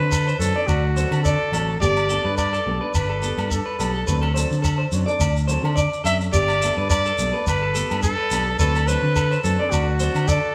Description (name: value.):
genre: highlife guitar band.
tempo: 106 BPM.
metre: 4/4.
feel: swing 54% on 16ths.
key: G major.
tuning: A4 = 441 Hz.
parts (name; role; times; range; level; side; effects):
breathy trumpet; melody; 0.0-10.5 s; F#4 to E5; -26 LUFS; equal; tape echo.
clean electric guitar; arpeggios; 0.0-10.5 s; G4 to D5; -29 LUFS; equal; none.
picked electric bass; bass; 0.0-10.4 s; G1 to D3; -25 LUFS; equal; none.
agogo bells; percussion; 0.1-10.3 s; none; -35 LUFS; equal; none.
shekere; percussion; 0.1-10.4 s; none; -29 LUFS; equal; none.
nylon-string guitar; accompaniment; 0.4-10.3 s; F#3 to A4; -34 LUFS; equal; none.
room: wet stone room reverb, RT60 1.5 s.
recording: band playing live in one room.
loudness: -21 LUFS.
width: mono.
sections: 0.0-10.5 A section.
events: none.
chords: 0.0 D7; 1.8 Gadd9; 4.1 D7; 6.3 Gadd9; 8.6 D7.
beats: 0.12 0.68 1.25 | 1.81 2.38 2.94 3.50 | 4.07 4.63 5.20 5.76 | 6.33 6.89 7.46 8.02 | 8.59 9.15 9.71 10.28.